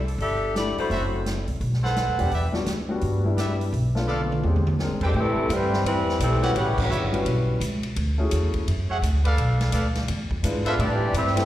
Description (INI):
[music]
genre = jazz, big band swing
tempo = 170 BPM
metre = 4/4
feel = swing 63% on 8ths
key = E minor, A minor from 5.1 s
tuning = A4 = 438 Hz
[part]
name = dark saxophone section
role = melody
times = 0.0-1.2, 5.0-7.2, 10.7-11.4 s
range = D3 to F5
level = -26 LUFS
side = left 3 dB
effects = none
[part]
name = upright bass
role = bass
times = 0.0-11.4 s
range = F#1 to A2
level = -24 LUFS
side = equal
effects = none
[part]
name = swinging big-band drum kit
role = drums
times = 0.1-11.4 s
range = crash cymbal, hi-hat, kick drum, ride cymbal, snare drum, toms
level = -32 LUFS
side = equal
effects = none
[part]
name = warm grand piano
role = accompaniment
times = 0.5-11.4 s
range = F#3 to B4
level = -28 LUFS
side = left 2 dB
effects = slapback echo
[part]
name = clear trumpet section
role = stabs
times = 0.9-10.7 s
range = F#4 to G5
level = -29 LUFS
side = right 1 dB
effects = slapback echo
[part]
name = clear trombone section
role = second line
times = 5.0-7.2, 10.7-11.4 s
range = G2 to F4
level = -27 LUFS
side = right 3 dB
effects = none
[sound]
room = light reverb, small room ambience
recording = live gig heard through the venue's PA, recital hall reverb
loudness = -21 LUFS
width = side -13 dB against mid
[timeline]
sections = 0.0-5.1 A section; 5.1-11.4 B section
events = drum fill 4.1-4.8; band accent 6.7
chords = 0.0 C69; 0.9 F#m7b5; 1.6 B7b9; 2.3 Em7; 3.7 Bm7b5; 4.4 E7alt; 5.1 Am9; 6.6 A13; 8.0 Dmaj9#11; 9.4 Bm7b5; 10.1 E7b9; 10.8 Am9